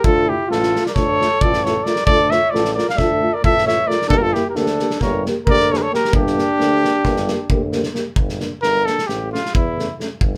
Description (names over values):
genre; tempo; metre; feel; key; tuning
balkan folk, Balkan brass band; 265 BPM (eighths); 9/8; straight; G dorian sharp4; A4 = 441 Hz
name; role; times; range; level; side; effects
mellow trumpet; melody; 0.0-10.0 s; E4 to F5; -21 LUFS; equal; none
mellow flugelhorn; second line; 0.0-7.7 s; D4 to D5; -24 LUFS; equal; none
mellow euphonium; accompaniment; 0.0-10.1 s; C#4 to G4; -30 LUFS; equal; none
warm tuba; bass; 0.0-10.4 s; G1 to E2; -26 LUFS; equal; none
loose indie drum kit; percussion; 0.0-10.4 s; kick drum, snare drum; -24 LUFS; equal; none
mellow euphonium; accompaniment; 0.1-10.1 s; A3 to Bb3; -28 LUFS; equal; none
room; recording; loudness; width
moderate studio reverb, RT60 0.5 s; band playing live in one room; -18 LUFS; mono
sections
0.0-8.2 A section; 8.2-10.4 B section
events
trumpet solo 8.2-10.4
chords
0.0 Dm; 4.1 Gm; 9.1 A